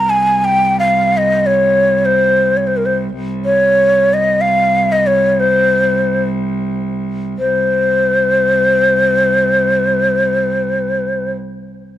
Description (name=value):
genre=Arabic maqam ensemble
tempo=free time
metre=none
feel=none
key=C maqam kurd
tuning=A4 = 440 Hz
part: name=breathy ney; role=melody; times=0.0-11.3 s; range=Bb4 to Bb5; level=-12 LUFS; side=left 1 dB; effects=none
part: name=bright cello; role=drone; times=0.0-11.3 s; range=C2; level=-19 LUFS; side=right 2 dB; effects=stereo widening
room=small room ambience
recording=dry, close 1970s-style studio recording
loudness=-12 LUFS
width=side -12 dB against mid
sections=0.0-7.4 A section; 7.4-12.0 B section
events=slowing down 3.1-7.4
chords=none